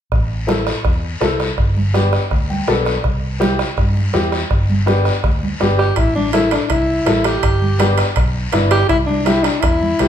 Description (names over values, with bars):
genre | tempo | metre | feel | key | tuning
latin, cumbia | 164 BPM | 4/4 | straight | A minor | A4 = 440 Hz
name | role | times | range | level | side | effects
fingered electric bass | bass | 0.1-10.1 s | G1 to G2 | -19 LUFS | equal | none
bombo | percussion | 0.1-10.1 s | none | -20 LUFS | right 1 dB | none
congas | percussion | 0.1-10.1 s | none | -24 LUFS | right 2 dB | none
guiro | percussion | 0.1-10.1 s | none | -28 LUFS | left 3 dB | none
warm upright piano | accompaniment | 0.5-10.1 s | B3 to G5 | -20 LUFS | left 3 dB | none
breathy alto saxophone | melody | 5.8-10.1 s | D4 to G4 | -17 LUFS | left 1 dB | none
timbales | percussion | 6.0-10.1 s | none | -26 LUFS | right 4 dB | none
room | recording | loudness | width
wet large studio reverb, RT60 0.9 s | band playing live in one room | -14 LUFS | side -9 dB against mid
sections
0.1-6.0 A section; 6.0-10.1 B section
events
upright piano fill 2.3-3.0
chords
0.1 Am; 1.6 G; 3.0 C; 4.5 G; 6.0 Am; 7.4 G; 8.9 C